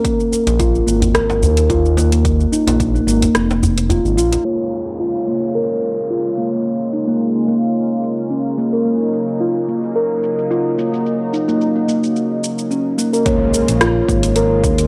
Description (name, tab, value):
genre	organic downtempo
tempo	109 BPM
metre	4/4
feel	swing 54% on 16ths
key	Bb minor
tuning	A4 = 436 Hz
part	steel tongue drum	arpeggios	0.0-14.9 s	Bb3 to Bb4	-19 LUFS	equal	low-pass filter, analog delay
part	deep house drum kit	drums	0.0-14.9 s	hi-hat, rim click, shaker	-24 LUFS	equal	overdrive, studio reverb
part	electronic kick drum	drums	0.0-2.9, 13.3-14.8 s	none	-24 LUFS	equal	overdrive, studio reverb
part	djembe	percussion	0.3-4.4 s	none	-24 LUFS	equal	none
part	smooth synth bass	bass	0.5-4.4, 13.7-14.9 s	F1 to Eb2	-19 LUFS	equal	transformer saturation
part	warm analog pad	sustained chords	4.4-14.9 s	Db3 to F4	-26 LUFS	equal	chorus, sidechain pumping
part	quartz singing bowl	texture	4.4-14.9 s	Db5	-31 LUFS	equal	none
part	downlifter and impact	sound effects	4.5-8.9, 13.3-14.9 s	none	-34 LUFS	equal	none
room	light reverb, digital ambience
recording	dry, gritty hardware recording, low-pass filter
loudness	-17 LUFS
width	mono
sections	0.0-4.5 A section; 4.5-13.3 B section; 13.3-14.9 C section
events	kick drops out 3.4-4.5; filter sweep on steel tongue drum 4.5-13.3; filter sweep 4.5-13.3; impact 13.3-14.9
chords	0.0 Eb5; 4.5 Bbm7; 8.9 Ebm7; 13.3 Bbm7